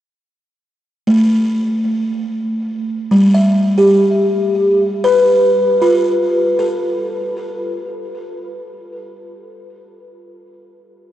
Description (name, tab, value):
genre	ambient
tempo	59 BPM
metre	4/4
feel	straight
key	unclear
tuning	A4 = 444 Hz
part	buzzing kalimba	solo	1.1-9.6 s	G3 to E5	-13 LUFS	equal	tape echo
room	wet huge ambient reverb, RT60 7.9 s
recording	worn, warbling old tape, cassette tape, warbly pitch drift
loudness	-12 LUFS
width	side -12 dB against mid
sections	0.0-11.1 A section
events	none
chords	0.0 Gsus2; 5.4 G13